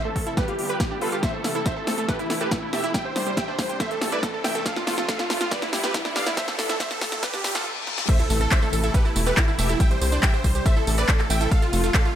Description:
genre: uplifting trance.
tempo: 140 BPM.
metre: 4/4.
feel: straight.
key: A minor.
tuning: A4 = 440 Hz.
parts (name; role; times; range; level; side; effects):
supersaw chords; melody; 0.0-12.1 s; E4 to G5; -28 LUFS; right 2 dB; sidechain pumping, low-pass filter, dub echo.
plucky unison lead; second line; 0.0-12.1 s; E4 to G5; -32 LUFS; equal; ensemble chorus, sidechain pumping, dub echo.
lush unison pad; sustained chords; 0.1-12.2 s; B2 to G4; -34 LUFS; left 1 dB; chorus, sidechain pumping.
analog pluck; arpeggios; 0.1-12.1 s; G3 to B4; -32 LUFS; right 2 dB; chorus, sidechain pumping, dub echo.
tight sequencer bass; bass; 0.2-11.9 s; E1 to G2; -26 LUFS; equal; sidechain pumping, high-pass filter.
big-room dance drum kit; drums; 0.2-12.1 s; crash cymbal, handclaps, hi-hat, snare drum, tambourine; -28 LUFS; equal; none.
electronic kick drum; drums; 0.2-12.0 s; none; -22 LUFS; equal; none.
riser, reverse cymbal and impact; sound effects; 2.7-9.8 s; none; -34 LUFS; left 2 dB; none.
room: light reverb, digital ambience.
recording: high-pass filter.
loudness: -21 LUFS.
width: side -10 dB against mid.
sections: 0.0-8.1 A section; 8.1-12.2 B section.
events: build-up 0.0-8.1; drum fill 0.0-7.7, 7.9; filter sweep on supersaw synth 0.0-8.1; filter sweep on digital synth lead 0.0-8.1; filter sweep 0.0-8.1; reverse cymbal 7.2-8.1; stop 7.7-8.1; drop 8.1-12.2; impact 8.1-9.8.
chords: 0.4 G7; 1.2 Am; 2.1 Esus4; 2.9 Csus2; 3.8 Am; 4.7 F; 5.5 Em7; 6.4 Am; 7.2 G7; 8.1 Am; 8.9 Esus4; 9.8 Csus2; 10.7 Am; 11.5 F.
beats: 0.37 0.80 | 1.23 1.66 2.09 2.52 | 2.94 3.37 3.80 4.23 | 4.66 5.09 5.51 5.94 | 6.37 6.80 7.23 7.66 | 8.09 8.52 8.94 9.37 | 9.80 10.23 10.66 11.09 | 11.52 11.94.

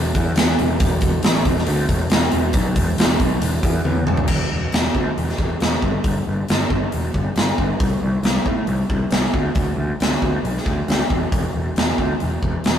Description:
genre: blues rock power trio and southern rock.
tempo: 137 BPM.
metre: 4/4.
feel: straight.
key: unclear.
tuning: A4 = 440 Hz.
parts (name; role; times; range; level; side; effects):
fuzz picked electric bass; bass; 0.0-12.8 s; E1 to A2; -22 LUFS; equal; overdrive.
big rock drum kit; drums; 0.1-12.8 s; crash cymbal, hi-hat, kick drum, snare drum, toms; -19 LUFS; equal; none.
room: light reverb.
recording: rough rehearsal-room recording, warm saturation.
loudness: -17 LUFS.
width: side -9 dB against mid.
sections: 0.0-4.3 A section; 4.3-12.8 B section.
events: drum fill 3.9-4.3.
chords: none.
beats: 0.38 | 0.81 1.24 1.68 2.11 | 2.55 2.98 3.42 3.85 | 4.29 4.73 5.17 5.60 | 6.04 6.48 6.92 7.36 | 7.80 8.24 8.68 9.12 | 9.56 10.01 10.45 10.89 | 11.33 11.77 12.21 12.65.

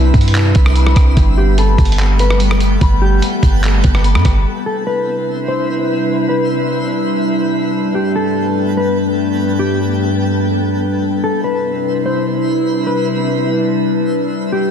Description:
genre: hip hop, atmospheric cloud-rap.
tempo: 146 BPM.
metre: 4/4.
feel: half-time.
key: C major.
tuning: A4 = 436 Hz.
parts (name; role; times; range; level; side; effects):
warbly tape-like pad; sustained chords; 0.0-14.7 s; G2 to B4; -17 LUFS; left 1 dB; chorus, built-in reverb, sidechain pumping.
concert harp; arpeggios; 0.0-6.3 s; G3 to B5; -25 LUFS; left 6 dB; low-pass filter, ping-pong delay.
warm 808-style bass; bass; 0.0-4.4 s; G1 to G2; -12 LUFS; equal; none.
twinkling granular texture; texture; 0.0-14.7 s; B3 to G5; -24 LUFS; right 1 dB; built-in reverb.
lo-fi sampler-style drum kit; drums; 0.1-4.3 s; handclaps, hi-hat, kick drum, rim click; -15 LUFS; equal; soft clipping on snare.
mellow electric guitar; melody; 1.4-14.7 s; G4 to C5; -22 LUFS; left 2 dB; spring reverb, low-pass filter, ping-pong delay.
room: light reverb, digital ambience.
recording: dense, heavily limited modern master.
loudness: -12 LUFS.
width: side -8 dB against mid.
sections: 0.0-4.5 A section; 4.5-14.7 B section.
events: none.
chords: 0.0 Cmaj7; 1.2 Gadd9; 4.5 Cmaj7; 7.7 Gadd9; 11.0 Cmaj7.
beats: 0.35 0.76 | 1.17 1.58 1.99 2.40 | 2.81 3.22 3.63 4.04 | 4.46 4.87 5.28 5.69 | 6.10 6.51 6.92 7.33 | 7.74 8.15 8.57 8.98 | 9.39 9.80 10.21 10.62 | 11.03 11.44 11.85 12.27 | 12.68 13.09 13.50 13.91 | 14.32.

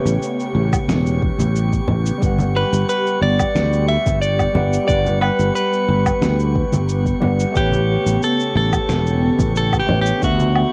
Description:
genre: sunset chillout.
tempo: 90 BPM.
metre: 4/4.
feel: straight.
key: G lydian.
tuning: A4 = 439 Hz.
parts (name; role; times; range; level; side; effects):
barky tine electric piano; accompaniment; 0.0-10.7 s; D3 to F#5; -28 LUFS; equal; cassette tape, tape echo.
airy breathy pad; sustained chords; 0.0-10.7 s; C#3 to G4; -28 LUFS; equal; chorus, phaser, cassette tape.
drifting glass-harmonics texture; texture; 0.0-10.7 s; C#6; -36 LUFS; equal; chorus, built-in reverb, cassette tape.
sustaining fretless electric bass; bass; 0.1-10.6 s; E1 to D2; -21 LUFS; equal; none.
electronic cabasa, woodblock and snare drum; drums; 0.1-10.7 s; none; -27 LUFS; equal; overdrive, cassette tape.
congas; percussion; 0.6-10.5 s; none; -26 LUFS; equal; none.
electronic kick drum; drums; 0.7-10.4 s; none; -25 LUFS; equal; overdrive, cassette tape.
clean electric guitar; melody; 2.6-10.7 s; F#4 to E5; -23 LUFS; equal; cassette tape, tape echo.
room: moderate booth ambience, RT60 0.2 s.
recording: home recording on cassette.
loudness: -18 LUFS.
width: mono.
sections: 0.0-10.7 A section.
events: none.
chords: 0.0 A9; 2.2 Gmaj7; 7.6 A9; 10.2 D69.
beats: 0.22 0.89 1.55 | 2.22 2.89 3.56 4.22 | 4.89 5.55 6.22 6.89 | 7.55 8.22 8.89 9.55 | 10.22.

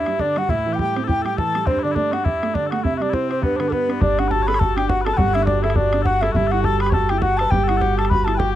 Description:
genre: celtic folk, Celtic reel.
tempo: 205 BPM.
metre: 4/4.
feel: swing 57% on 8ths.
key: unclear.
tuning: A4 = 440 Hz.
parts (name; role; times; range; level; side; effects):
reedy baroque flute; melody; 0.0-8.6 s; A4 to B5; -22 LUFS; left 1 dB; none.
mellow small bagpipes; second line; 0.0-8.6 s; B3 to C#5; -27 LUFS; left 10 dB; none.
clear upright piano; accompaniment; 0.0-8.6 s; G2 to B4; -23 LUFS; right 5 dB; none.
bodhran; percussion; 0.1-8.5 s; none; -23 LUFS; equal; none.
upright bass; bass; 4.0-8.6 s; G1; -22 LUFS; left 1 dB; none.
room: little or no reverb.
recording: dry, close 1970s-style studio recording.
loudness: -17 LUFS.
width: side -12 dB against mid.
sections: 0.0-4.0 A section; 4.0-8.6 B section.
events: none.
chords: 0.5 A7(no3); 1.7 Gsus2; 2.8 C; 3.4 G; 4.0 D/G; 6.3 Emadd9/G.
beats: 0.19 | 0.49 0.78 1.08 1.37 | 1.67 1.96 2.25 2.55 | 2.84 3.13 3.43 3.72 | 4.01 4.31 4.60 4.89 | 5.18 5.47 5.76 6.06 | 6.35 6.64 6.93 7.22 | 7.52 7.81 8.10 8.39.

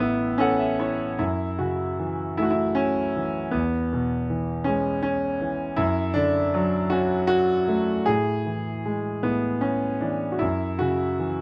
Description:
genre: classical, lyrical solo piano.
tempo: 52 BPM (dotted quarters).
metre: 6/8.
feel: uneven beats, rubato.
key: F# minor.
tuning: A4 = 439 Hz.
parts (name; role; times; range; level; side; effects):
clear concert grand piano; solo; 0.0-11.4 s; A1 to F#5; -24 LUFS; equal; none.
room: little or no reverb.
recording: close, detailed microphones.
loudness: -25 LUFS.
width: mono.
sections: 0.0-1.2 A section; 1.2-11.4 B section.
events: grand piano fill 0.0-1.2.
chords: 0.0 Asus2; 1.2 F#m7; 3.5 C#m7/E; 5.8 Dmaj7/F#; 8.1 A5; 10.4 F#7(no3).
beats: 0.01 | 1.20 2.39 | 3.54 4.67 | 5.78 6.91 | 8.07 9.23 | 10.40.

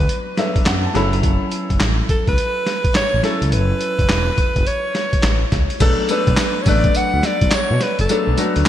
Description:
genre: R&B, new jack swing.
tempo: 105 BPM.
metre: 4/4.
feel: swing 64% on 16ths.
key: B minor.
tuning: A4 = 442 Hz.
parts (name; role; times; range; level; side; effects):
clear alto saxophone; melody; 0.0-8.5 s; A4 to F#5; -22 LUFS; equal; ping-pong delay.
clear concert grand piano; accompaniment; 0.0-8.7 s; F#3 to B5; -22 LUFS; left 2 dB; none.
smooth gliding synth bass; bass; 0.0-8.6 s; E1 to B2; -20 LUFS; equal; none.
boom bap sampler-style drum kit; drums; 0.1-8.7 s; crash cymbal, handclaps, hi-hat, kick drum, snare drum, tambourine; -19 LUFS; equal; gated reverb.
room: moderate plate reverb, RT60 2.9 s.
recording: bright 1980s-style digital production, lossy compression artefacts.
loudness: -15 LUFS.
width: side -11 dB against mid.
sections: 0.0-5.8 A section; 5.8-8.7 B section.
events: grand piano fill 0.1-1.2.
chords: 0.0 Bm7; 0.9 F#m7; 5.8 Bm7.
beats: 0.09 0.67 | 1.24 1.81 2.38 2.95 | 3.52 4.09 4.67 5.24 | 5.81 6.38 6.95 7.52 | 8.09 8.66.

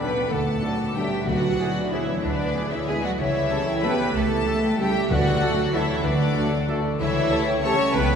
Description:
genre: classical, orchestral ballroom waltz.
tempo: 188 BPM.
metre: 3/4.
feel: uneven beats, rubato.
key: D major.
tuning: A4 = 440 Hz.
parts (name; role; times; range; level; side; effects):
warm studio violin section; melody; 0.0-8.2 s; D5 to C#6; -30 LUFS; left 5 dB; none.
flute section; second line; 0.0-8.2 s; A4 to A5; -31 LUFS; equal; none.
mellow clarinet; second line; 0.0-8.2 s; F#4 to D5; -32 LUFS; left 1 dB; none.
rich studio violin section; second line; 0.0-8.2 s; D4 to C#5; -33 LUFS; left 2 dB; none.
rich studio viola section; accompaniment; 0.0-8.2 s; D4 to C#5; -28 LUFS; right 3 dB; none.
mellow French horn section; sustained chords; 0.0-7.8 s; A3 to G4; -35 LUFS; left 3 dB; none.
warm trombone section; sustained chords; 0.0-7.8 s; C#3 to A3; -36 LUFS; right 2 dB; none.
concert harp; arpeggios; 0.0-8.2 s; C#3 to D6; -30 LUFS; left 4 dB; none.
mellow trumpet; stabs; 0.0-7.8 s; G#4 to A4; -35 LUFS; equal; none.
warm studio cello section; bass; 0.0-8.2 s; D3 to C#4; -28 LUFS; right 2 dB; none.
dark studio double bass section; bass; 0.3-8.2 s; C#2 to D2; -29 LUFS; right 2 dB; none.
timpani; percussion; 1.3-1.7, 5.1-5.5 s; D3; -35 LUFS; equal; none.
room: wet cathedral reverb, RT60 5.9 s.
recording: recorded in a church or concert hall.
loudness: -20 LUFS.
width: side -7 dB against mid.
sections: 0.0-8.2 A section.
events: none.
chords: 0.0 D; 1.3 E7/D; 3.2 A7/C#; 5.1 D; 7.0 A7/C#.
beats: | 0.31 0.63 0.96 | 1.27 1.59 1.92 | 2.24 2.55 2.88 | 3.19 3.51 3.84 | 4.15 4.47 4.80 | 5.11 5.42 5.74 | 6.05 6.36 6.69 | 7.00 7.31 7.64 | 7.95.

